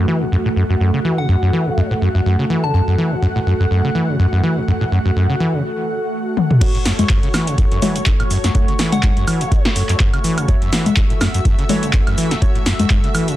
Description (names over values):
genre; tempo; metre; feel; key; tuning
acid house; 124 BPM; 4/4; swing 56% on 16ths; F# minor pentatonic; A4 = 440 Hz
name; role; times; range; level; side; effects
lush unison pad; sustained chords; 0.0-13.4 s; A3 to F#5; -23 LUFS; equal; chorus, sidechain pumping
acid bass, saw; riff; 0.0-13.4 s; F#2 to E3; -17 LUFS; equal; overdrive, sidechain pumping, tape echo
soft synth bell; melody; 1.2-2.8, 8.9-9.6 s; F#5 to A5; -28 LUFS; left 1 dB; chorus, phaser, tape echo
electro analog drum machine; drums; 6.4-13.4 s; cabasa, congas, crash cymbal, handclaps, hi-hat, snare drum, toms, woodblock; -19 LUFS; left 2 dB; none
deep mellow chord stab; stabs; 6.6-12.6 s; A3 to C#5; -28 LUFS; right 5 dB; chorus, tape echo
electronic kick drum; drums; 6.6-13.0 s; none; -17 LUFS; equal; overdrive
room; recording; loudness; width
moderate studio reverb, RT60 0.5 s; dense, heavily limited modern master; -14 LUFS; side -14 dB against mid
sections
0.0-6.6 A section; 6.6-13.4 B section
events
filter sweep on analog synth pad 0.0-6.6; drum fill 6.4; drop 6.6-13.4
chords
0.0 F#m